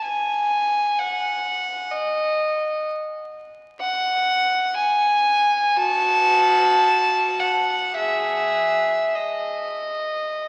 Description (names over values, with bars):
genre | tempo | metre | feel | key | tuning
classical, free, expressive piece for unaccompanied violin | 47-66 BPM | 4/4 | rubato | unclear | A4 = 437 Hz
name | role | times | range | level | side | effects
rich violin | solo | 0.0-10.5 s | F#4 to A5 | -21 LUFS | equal | none
room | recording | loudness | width
wet cathedral reverb, RT60 4.2 s | very old 78 rpm record, vinyl crackle | -21 LUFS | mono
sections
0.0-10.5 A section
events
none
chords
none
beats
| 0.04 0.98 1.90 2.85 | 3.81 4.77 5.77 6.83 | 7.98 9.15 10.40